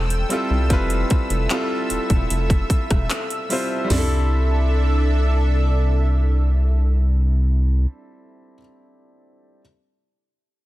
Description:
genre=contemporary R&B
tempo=75 BPM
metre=4/4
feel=straight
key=C major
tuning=A4 = 440 Hz
part: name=bright grand piano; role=accompaniment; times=0.0-9.6 s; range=G3 to C5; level=-26 LUFS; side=equal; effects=none
part: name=lush unison pad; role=sustained chords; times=0.0-7.9 s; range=D4 to E6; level=-28 LUFS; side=right 1 dB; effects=chorus
part: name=rubbery square bass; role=bass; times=0.0-7.9 s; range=E1 to C2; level=-18 LUFS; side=equal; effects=none
part: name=trap drum kit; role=drums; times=0.1-4.1 s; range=handclaps, hi-hat, kick drum, rim click, snare drum, toms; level=-21 LUFS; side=equal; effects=overdrive
room=digital ambience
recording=dense, heavily limited modern master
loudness=-17 LUFS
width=side -16 dB against mid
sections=0.0-3.9 A section; 3.9-7.1 B section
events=none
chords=0.0 Fmaj9; 3.9 C69

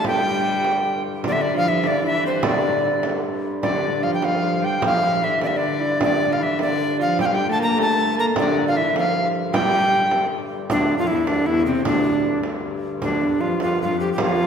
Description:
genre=medieval dance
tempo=102 BPM (dotted quarters)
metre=6/8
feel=straight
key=G dorian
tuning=A4 = 440 Hz
part: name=bright reedy tenor recorder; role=melody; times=0.0-14.5 s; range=C4 to Bb5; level=-21 LUFS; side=equal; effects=none
part: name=concert harp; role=second line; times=0.0-11.9 s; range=C4 to Bb4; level=-26 LUFS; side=right 3 dB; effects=none
part: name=rich viola da gamba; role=second line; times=0.0-14.5 s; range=D2 to Bb3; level=-26 LUFS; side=left 3 dB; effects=none
part: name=dark hurdy-gurdy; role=drone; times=0.0-14.5 s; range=G2 to D3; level=-30 LUFS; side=left 3 dB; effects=none
part: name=frame drum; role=percussion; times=0.0-14.5 s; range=none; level=-27 LUFS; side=right 3 dB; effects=none
room=wet scoring stage reverb, RT60 2.0 s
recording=recorded in a church or concert hall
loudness=-18 LUFS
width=side -7 dB against mid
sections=0.0-1.3 A section; 1.3-10.7 B section; 10.7-14.5 B section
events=speeding up 0.0-14.5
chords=none

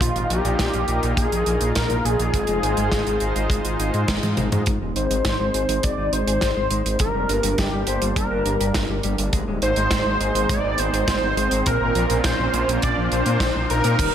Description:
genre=synthwave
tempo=103 BPM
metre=4/4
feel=straight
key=unclear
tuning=A4 = 441 Hz
part: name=wide unison lead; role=melody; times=0.0-14.1 s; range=F4 to D5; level=-23 LUFS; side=equal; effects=wide subtle chorus, cassette tape, tape echo
part: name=lush unison pad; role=sustained chords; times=0.0-14.1 s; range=Eb3 to G5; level=-28 LUFS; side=equal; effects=chorus, sidechain pumping
part: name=mellow electric guitar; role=riff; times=0.0-14.1 s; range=Bb2 to Ab4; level=-30 LUFS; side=left 2 dB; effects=wide subtle chorus, low-pass filter, tape echo
part: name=dark detuned saw bass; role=bass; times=0.0-14.1 s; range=Eb1 to Bb2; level=-25 LUFS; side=equal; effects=none
part: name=kick drum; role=drums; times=0.0-14.1 s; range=none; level=-27 LUFS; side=equal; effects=none
part: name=modern studio drum kit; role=drums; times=0.0-14.1 s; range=crash cymbal, hi-hat, snare drum, toms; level=-28 LUFS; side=right 2 dB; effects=gated reverb
part: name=riser and impact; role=sound effects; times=9.0-14.1 s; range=none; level=-32 LUFS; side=right 1 dB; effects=none
room=light reverb, small room ambience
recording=none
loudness=-19 LUFS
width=side -9 dB against mid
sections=0.0-4.7 A section; 4.7-14.0 B section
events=band accent 4.1; drum fill 4.2-4.7; filter sweep on analog synth pad 4.7-14.0; filter sweep on clean electric guitar 4.7-14.0; riser 9.0-14.0; impact 14.0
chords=0.0 Bbsus4; 2.3 Ab6; 4.7 Ab; 7.0 Gm; 9.3 Ab; 11.7 Bbsus2

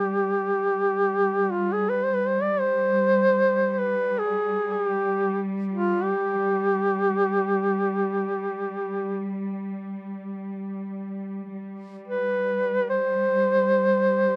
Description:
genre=caucasian folk, Caucasian lament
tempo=free time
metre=none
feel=none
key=G major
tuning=A4 = 442 Hz
part: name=warm duduk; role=melody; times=0.0-14.4 s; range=F4 to D5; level=-24 LUFS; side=equal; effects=none
part: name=warm studio cello section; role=drone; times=0.0-14.4 s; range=G3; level=-32 LUFS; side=equal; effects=none
room=moderate studio reverb, RT60 0.6 s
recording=rough home demo mix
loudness=-24 LUFS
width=mono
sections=0.0-11.5 A section; 11.5-14.4 A section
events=none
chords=none

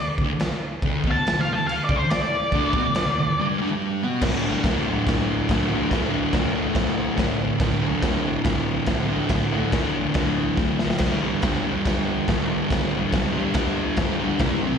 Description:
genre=garage rock duo or trio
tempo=141 BPM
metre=4/4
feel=straight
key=unclear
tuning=A4 = 439 Hz
part: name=octave-fuzz lead guitar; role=melody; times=0.0-3.5 s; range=C5 to A5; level=-24 LUFS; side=equal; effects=distortion, slapback echo
part: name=fuzz guitar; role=riff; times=0.0-14.8 s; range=D2 to C4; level=-23 LUFS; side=equal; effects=distortion, slapback echo
part: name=raw garage drum kit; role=drums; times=0.2-14.5 s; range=crash cymbal, kick drum, snare drum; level=-25 LUFS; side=equal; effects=none
room=light reverb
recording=live gig heard through the venue's PA, recital hall reverb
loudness=-20 LUFS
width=side -7 dB against mid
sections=0.0-4.2 A section; 4.2-14.8 B section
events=lead electric guitar solo 0.0-4.2; break 3.4-4.2; drum fill 10.6-11.0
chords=0.0 Dsus4; 4.2 D5; 11.0 G5

